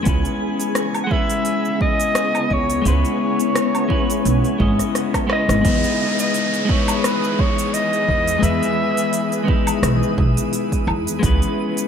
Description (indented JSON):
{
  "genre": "sunset chillout",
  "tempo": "86 BPM",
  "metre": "4/4",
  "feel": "swing 55% on 16ths",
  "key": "unclear",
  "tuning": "A4 = 440 Hz",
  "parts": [
    { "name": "clean electric guitar", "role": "accompaniment", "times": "0.0-11.9 s", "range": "G#3 to D#5", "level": "-23 LUFS", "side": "left 3 dB", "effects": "auto-pan" },
    { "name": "shimmering ambient pad", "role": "sustained chords", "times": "0.0-11.9 s", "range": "C#3 to B4", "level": "-25 LUFS", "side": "left 2 dB", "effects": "chorus, built-in reverb" },
    { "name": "twinkling granular texture", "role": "texture", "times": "0.0-11.9 s", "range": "E3 to D#6", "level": "-31 LUFS", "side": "equal", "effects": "built-in reverb" },
    { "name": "upright bass", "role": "bass", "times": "0.1-11.4 s", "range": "G#1 to E2", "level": "-20 LUFS", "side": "right 1 dB", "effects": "none" },
    { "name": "deep house drum kit", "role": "drums", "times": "0.1-11.9 s", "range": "hi-hat, rim click, shaker, woodblock", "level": "-25 LUFS", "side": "equal", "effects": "gated reverb" },
    { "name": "electronic kick drum", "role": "drums", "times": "0.1-11.4 s", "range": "none", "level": "-21 LUFS", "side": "right 1 dB", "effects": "none" },
    { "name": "warm soprano saxophone", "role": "melody", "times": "1.0-9.5 s", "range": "B4 to F#5", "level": "-23 LUFS", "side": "equal", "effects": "ping-pong delay" },
    { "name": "downlifter", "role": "sound effects", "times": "5.6-11.2 s", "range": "none", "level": "-29 LUFS", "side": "right 1 dB", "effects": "none" }
  ],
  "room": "moderate plate reverb, RT60 2.1 s",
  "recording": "bright 1980s-style digital production",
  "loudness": "-16 LUFS",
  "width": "side -7 dB against mid",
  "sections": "0.0-5.6 A section; 5.6-11.9 B section",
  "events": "drum fill 5.0-5.6",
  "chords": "0.1 C#m7; 5.6 Emaj7; 11.2 C#m7",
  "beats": "| 0.07 0.77 1.46 2.16 | 2.86 3.56 4.25 4.95 | 5.65 6.35 7.04 7.74 | 8.44 9.14 9.84 10.53 | 11.23"
}